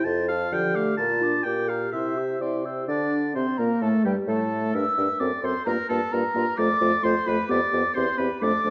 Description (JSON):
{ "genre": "quick classical-period movement for wind quintet", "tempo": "130 BPM", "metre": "2/4", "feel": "straight", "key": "unclear", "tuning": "A4 = 439 Hz", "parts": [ { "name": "concert flute", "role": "melody", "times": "0.0-8.7 s", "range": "G5 to F6", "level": "-31 LUFS", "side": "equal", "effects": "none" }, { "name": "clear oboe", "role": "second line", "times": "0.0-8.7 s", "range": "G4 to A5", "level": "-32 LUFS", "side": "equal", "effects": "none" }, { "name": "mellow French horn", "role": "accompaniment", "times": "0.0-8.7 s", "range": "F3 to Bb4", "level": "-30 LUFS", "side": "equal", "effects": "none" }, { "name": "mellow clarinet", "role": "accompaniment", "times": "0.0-8.7 s", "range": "G3 to D5", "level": "-32 LUFS", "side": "equal", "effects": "none" }, { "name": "mellow bassoon", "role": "bass", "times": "0.1-8.7 s", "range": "E2 to D3", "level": "-30 LUFS", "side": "equal", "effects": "none" } ], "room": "wet recital hall reverb, RT60 1.4 s", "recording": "dark, warm production", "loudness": "-24 LUFS", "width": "mono", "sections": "0.0-2.9 A section; 2.9-8.7 B section", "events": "none", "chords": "0.1 F; 0.5 Dm; 1.0 Bb; 1.5 Gm/Bb; 1.9 C; 2.9 N.C.; 3.4 Bbsus2; 3.8 Gsus2; 4.7 Gm; 5.2 D7/F#; 5.7 Gm7; 6.6 Dm/F; 7.5 G7/F; 8.0 C/E", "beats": "| 0.06 0.52 | 0.98 1.46 | 1.93 2.41 | 2.88 3.35 | 3.82 4.28 | 4.75 5.21 | 5.67 6.13 | 6.58 7.04 | 7.50 7.96 | 8.42" }